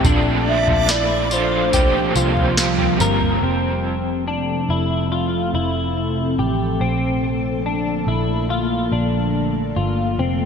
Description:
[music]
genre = dream pop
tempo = 71 BPM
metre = 4/4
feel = straight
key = F major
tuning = A4 = 440 Hz
[part]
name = raw garage guitar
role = accompaniment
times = 0.0-3.9 s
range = Bb2 to G4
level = -24 LUFS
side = right 4 dB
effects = overdrive, tremolo, analog chorus
[part]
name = ethereal airy pad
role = sustained chords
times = 0.0-10.5 s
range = Bb2 to A4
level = -23 LUFS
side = right 1 dB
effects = ensemble chorus, built-in reverb
[part]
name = clean electric guitar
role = arpeggios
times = 0.0-10.5 s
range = C4 to Bb4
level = -23 LUFS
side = left 4 dB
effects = analog chorus, ping-pong delay
[part]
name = vintage muted picked electric bass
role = bass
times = 0.0-10.5 s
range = F1 to C2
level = -23 LUFS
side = equal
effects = none
[part]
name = booming analog drum machine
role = drums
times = 0.0-3.4 s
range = kick drum, snare drum, tambourine, toms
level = -21 LUFS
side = right 1 dB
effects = gated reverb
[part]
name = hollow clarinet-like synth lead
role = melody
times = 0.5-3.0 s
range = C5 to E5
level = -22 LUFS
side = equal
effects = chorus, ping-pong delay
[sound]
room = moderate lush hall reverb, RT60 2.7 s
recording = bright 1980s-style digital production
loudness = -17 LUFS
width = side -6 dB against mid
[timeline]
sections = 0.0-3.4 A section; 3.4-10.5 B section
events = none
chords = 0.0 Bbmaj7; 1.7 C7sus4; 3.4 Fmaj7; 6.8 Bbmaj7

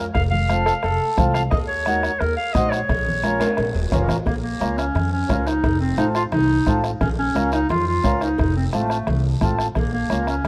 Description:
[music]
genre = latin, cumbia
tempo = 175 BPM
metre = 4/4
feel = straight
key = Bb harmonic minor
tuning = A4 = 442 Hz
[part]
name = clear clarinet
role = melody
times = 0.0-10.5 s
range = A3 to F5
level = -25 LUFS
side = equal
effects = none
[part]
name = mellow accordion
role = accompaniment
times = 0.0-10.4 s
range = C4 to C5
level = -29 LUFS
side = equal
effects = none
[part]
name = upright bass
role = bass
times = 0.0-10.5 s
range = Eb1 to F2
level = -27 LUFS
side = equal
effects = none
[part]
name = bombo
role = percussion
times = 0.1-10.5 s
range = none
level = -26 LUFS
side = equal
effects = none
[part]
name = cowbell and timbales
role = percussion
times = 0.2-10.5 s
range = none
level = -34 LUFS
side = equal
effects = none
[part]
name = guiro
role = percussion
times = 0.2-10.5 s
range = none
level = -42 LUFS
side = equal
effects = none
[part]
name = congas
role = percussion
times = 0.3-10.5 s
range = none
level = -31 LUFS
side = equal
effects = none
[part]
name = bright trombone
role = second line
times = 0.7-1.2 s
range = A4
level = -27 LUFS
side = equal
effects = none
[sound]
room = light reverb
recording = none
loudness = -21 LUFS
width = mono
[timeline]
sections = 0.0-4.3 A section; 4.3-10.5 B section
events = drum fill 3.4-4.3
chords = 0.1 F; 1.5 Ebm; 2.9 Bbm; 5.6 F7; 7.0 Bbm; 8.4 F; 9.8 Bbm

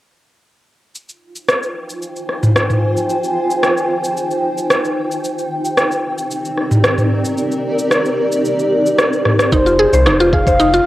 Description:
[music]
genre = organic downtempo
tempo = 112 BPM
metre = 4/4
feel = straight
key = F dorian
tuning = A4 = 440 Hz
[part]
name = granular cloud pad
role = sustained chords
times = 1.7-10.9 s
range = C4 to Ab5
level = -18 LUFS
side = equal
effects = built-in reverb, sidechain pumping
[part]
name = afro-pop drum kit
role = drums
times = 1.0-10.8 s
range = rim click, shaker, toms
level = -16 LUFS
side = equal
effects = cassette tape
[part]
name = breathy flute-like synth lead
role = melody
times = 9.5-10.9 s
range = C5 to F5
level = -16 LUFS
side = equal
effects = wide subtle chorus, cassette tape
[part]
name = mallet-like synth pluck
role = arpeggios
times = 9.5-10.9 s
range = Eb4 to C5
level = -13 LUFS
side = equal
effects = chorus
[part]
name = warm sub bass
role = bass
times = 9.5-10.8 s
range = F1 to C2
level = -18 LUFS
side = equal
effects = sidechain pumping
[part]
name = electronic kick drum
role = drums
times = 9.5-10.6 s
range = none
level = -17 LUFS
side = equal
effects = cassette tape
[sound]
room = wet spring reverb, RT60 1.8 s, digital ambience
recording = home recording on cassette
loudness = -13 LUFS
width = side -15 dB against mid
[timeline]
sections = 1.0-9.5 A section; 9.5-10.9 B section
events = drum fill 9.3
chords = 1.0 Fm7; 5.2 Cm7; 9.5 Fm7

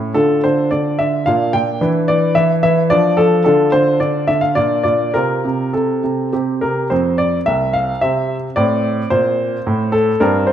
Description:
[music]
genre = classical-period piano sonatina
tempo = 101-111 BPM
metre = 3/4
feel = rubato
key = D minor, F major from 3.5 s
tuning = A4 = 439 Hz
[part]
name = clear baby grand piano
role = solo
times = 0.0-10.5 s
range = C2 to G5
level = -14 LUFS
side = equal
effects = none
[sound]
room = moderate recital hall reverb, RT60 1.7 s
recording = none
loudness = -14 LUFS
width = side -10 dB against mid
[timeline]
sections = 0.0-6.9 A section; 6.9-10.5 B section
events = none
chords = 0.2 Dm; 1.3 Bb; 1.8 E7(no3); 2.9 Dm/F; 3.5 Dm; 4.6 Bb; 5.1 F/C; 6.3 C5; 6.9 F5; 8.0 N.C.; 8.6 Amadd11

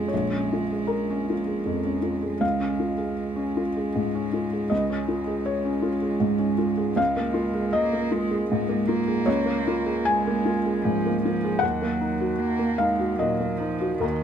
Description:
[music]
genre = neoclassical piano and strings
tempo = 78 BPM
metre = 3/4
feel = rubato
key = Bb minor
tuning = A4 = 440 Hz
[part]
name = warm cello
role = second line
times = 0.0-14.2 s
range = Eb3 to Bb3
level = -29 LUFS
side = right 5 dB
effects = none
[part]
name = felt-muted upright piano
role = accompaniment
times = 0.0-14.2 s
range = Bb1 to Ab5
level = -24 LUFS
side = left 1 dB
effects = none
[sound]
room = light reverb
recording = close, detailed microphones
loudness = -22 LUFS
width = side -8 dB against mid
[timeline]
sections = 0.0-14.2 A section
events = none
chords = 0.0 Bbm7; 2.4 Db; 7.0 Bbm7/Db; 11.6 Ebm

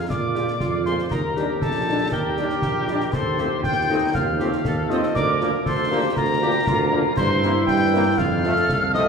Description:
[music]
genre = military-style march for wind band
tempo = 119 BPM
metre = 2/4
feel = straight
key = Bb major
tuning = A4 = 440 Hz
[part]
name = dark cornet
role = melody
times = 0.0-9.1 s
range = G4 to G5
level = -26 LUFS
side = left 1 dB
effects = none
[part]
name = mellow piccolo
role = second line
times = 0.0-9.1 s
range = G5 to G6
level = -26 LUFS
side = left 2 dB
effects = none
[part]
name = warm woodwind section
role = second line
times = 0.0-9.1 s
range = Eb4 to Bb4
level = -28 LUFS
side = right 1 dB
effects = none
[part]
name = warm tuba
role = bass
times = 0.1-9.1 s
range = Bb1 to Bb2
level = -24 LUFS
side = right 3 dB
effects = none
[part]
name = concert snare drum, concert bass drum and clash cymbals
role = drums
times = 0.1-9.1 s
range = none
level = -29 LUFS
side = left 1 dB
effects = none
[part]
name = mellow French horn section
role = accompaniment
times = 0.4-9.0 s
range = Bb3 to Bb4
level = -29 LUFS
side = left 3 dB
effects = none
[part]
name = warm trombone section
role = sustained chords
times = 0.4-9.0 s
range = E3 to F4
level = -31 LUFS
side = right 1 dB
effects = none
[sound]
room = wet scoring stage reverb, RT60 1.8 s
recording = heard from further back in the room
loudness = -19 LUFS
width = side -5 dB against mid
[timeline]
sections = 0.0-9.1 A section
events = none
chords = 0.0 Bb7; 1.1 Ebmaj7; 3.1 F7/Eb; 5.2 Bb/D; 7.2 C7/G; 8.2 F

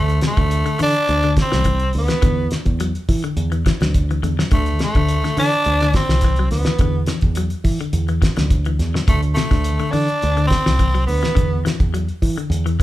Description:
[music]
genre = afrobeat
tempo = 105 BPM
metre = 4/4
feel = straight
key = D mixolydian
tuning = A4 = 440 Hz
[part]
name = raspy tenor saxophone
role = melody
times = 0.0-11.6 s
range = A3 to D4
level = -20 LUFS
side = equal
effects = none
[part]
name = semi-hollow electric guitar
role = arpeggios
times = 0.0-12.8 s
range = C3 to F#3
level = -25 LUFS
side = left 4 dB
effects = none
[part]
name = fingered electric bass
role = bass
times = 0.0-12.8 s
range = C2 to E3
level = -20 LUFS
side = equal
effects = none
[part]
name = cloth-damped thuddy drum kit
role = drums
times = 0.1-12.8 s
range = hi-hat, kick drum, snare drum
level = -20 LUFS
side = equal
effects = none
[sound]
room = moderate large studio reverb, RT60 0.9 s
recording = band playing live in one room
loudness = -16 LUFS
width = side -15 dB against mid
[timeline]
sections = 0.0-12.8 A section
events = none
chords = 0.0 D5; 2.2 Esus2; 4.5 D7(no3); 6.8 Esus2; 9.1 D7(no3); 11.4 Esus2

